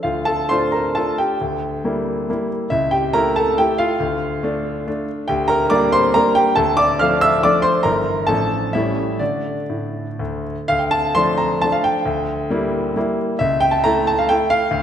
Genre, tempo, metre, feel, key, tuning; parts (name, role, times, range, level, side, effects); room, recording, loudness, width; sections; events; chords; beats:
classical, romantic triple-time dance for piano with dotted rhythms; 117-151 BPM; 3/4; rubato; D minor; A4 = 439 Hz
warm grand piano; solo; 0.0-14.8 s; G1 to F6; -16 LUFS; equal
wet concert hall reverb, RT60 1.6 s; -16 LUFS; side -9 dB against mid
0.1-10.7 A section; 10.7-14.8 A section
0.1 Dm; 1.4 Em7b5/D; 2.7 A/C#; 4.0 Dm; 5.3 Gm/D; 6.6 Dm; 7.8 Edim/G; 8.3 Dm/A; 8.7 A7; 9.2 D5; 10.7 Dm; 12.1 Em7b5/D; 13.4 A/C#
| 0.05 0.51 0.97 | 1.40 1.84 2.28 | 2.71 3.15 3.60 | 4.00 4.43 4.87 | 5.28 5.71 6.15 | 6.57 7.00 7.43 | 7.84 8.28 8.74 | 9.21 9.70 10.20 | 10.69 11.15 11.62 | 12.06 12.50 12.96 | 13.40 13.85 14.30 | 14.71